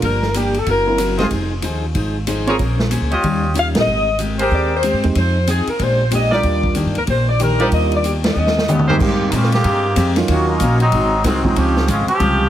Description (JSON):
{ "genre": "jazz, big band swing", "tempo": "187 BPM", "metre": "4/4", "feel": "swing 62% on 8ths", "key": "Eb major, Ab major from 9.0 s", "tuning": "A4 = 444 Hz", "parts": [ { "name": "warm saxophone section", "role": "melody", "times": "0.0-1.2, 3.6-8.8 s", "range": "G4 to F5", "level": "-19 LUFS", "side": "left 2 dB", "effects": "none" }, { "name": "picked steel-string acoustic guitar", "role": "accompaniment", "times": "0.0-12.4 s", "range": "G2 to C5", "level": "-23 LUFS", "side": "left 2 dB", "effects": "none" }, { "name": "upright bass", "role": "bass", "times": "0.0-12.5 s", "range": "F1 to Bb2", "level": "-19 LUFS", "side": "equal", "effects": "none" }, { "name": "swinging big-band drum kit", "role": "drums", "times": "0.0-12.3 s", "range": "crash cymbal, hi-hat, kick drum, ride cymbal, snare drum, toms", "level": "-23 LUFS", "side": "equal", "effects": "none" }, { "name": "warm baby grand piano", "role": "accompaniment", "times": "0.9-11.9 s", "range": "Ab2 to Ab4", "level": "-22 LUFS", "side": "right 4 dB", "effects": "none" }, { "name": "clear trumpet section", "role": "stabs", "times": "1.2-9.0 s", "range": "Eb4 to Eb5", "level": "-22 LUFS", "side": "equal", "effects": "none" }, { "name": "muted trombone section", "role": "second line", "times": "8.7-12.5 s", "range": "Db3 to G4", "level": "-19 LUFS", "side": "equal", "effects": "none" } ], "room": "light reverb", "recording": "heavily compressed radio sound, multiband compression", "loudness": "-14 LUFS", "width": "side -11 dB against mid", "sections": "0.0-9.0 A section; 9.0-12.5 B section", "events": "band accent 3.7, 8.2; drum fill 8.4-9.0; trombone section solo 9.0-12.5", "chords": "0.0 Gm7; 0.7 Gb7#11; 1.3 Fm7; 2.6 Bbm9; 3.2 Eb9; 3.9 Abmaj9; 5.2 Fm7; 5.8 Bb13; 6.4 Ebmaj7; 8.4 Eb7alt; 9.0 Abmaj9; 10.3 Ebm7; 10.9 Ab7; 11.6 Dbmaj7" }